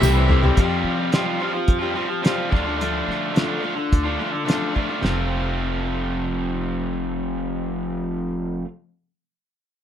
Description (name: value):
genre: folk rock and heartland rock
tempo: 108 BPM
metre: 4/4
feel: straight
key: F major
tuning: A4 = 441 Hz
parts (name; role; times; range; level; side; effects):
- picked steel-string acoustic guitar; accompaniment; 0.0-8.7 s; F2 to G4; -28 LUFS; left 7 dB; none
- warm upright piano; accompaniment; 0.0-0.6 s; none; barely audible; none; none
- accordion; sustained chords; 0.0-0.6 s; none; barely audible; none; none
- raw garage guitar; riff; 0.0-8.7 s; F2 to F4; -24 LUFS; right 1 dB; overdrive
- upright bass; bass; 0.0-8.6 s; F1 to F3; -26 LUFS; equal; none
- cloth-damped thuddy drum kit; drums; 0.0-5.2 s; hi-hat, kick drum, snare drum, toms; -20 LUFS; equal; none
room: light reverb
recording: rough home demo mix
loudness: -20 LUFS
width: side -10 dB against mid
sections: 0.6-5.0 A section; 5.0-7.3 B section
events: drum fill 0.0-0.6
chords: 0.0 C6; 0.6 Fsus2; 2.5 Dm; 5.0 F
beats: 0.02 | 0.57 1.13 1.68 2.24 | 2.80 3.35 3.91 4.47 | 5.03 5.59 6.15 6.71